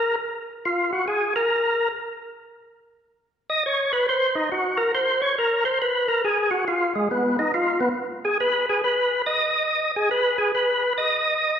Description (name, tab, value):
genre	jazz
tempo	140 BPM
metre	4/4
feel	swing 65% on 8ths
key	unclear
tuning	A4 = 439 Hz
part	percussive tonewheel organ	solo	0.0-11.6 s	Ab3 to Eb5	-20 LUFS	equal	overdrive, fast rotary speaker
room	wet recital hall reverb, RT60 1.7 s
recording	recorded in a church or concert hall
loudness	-20 LUFS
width	side -8 dB against mid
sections	0.0-11.6 A section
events	tonewheel organ solo 0.0-11.6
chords	none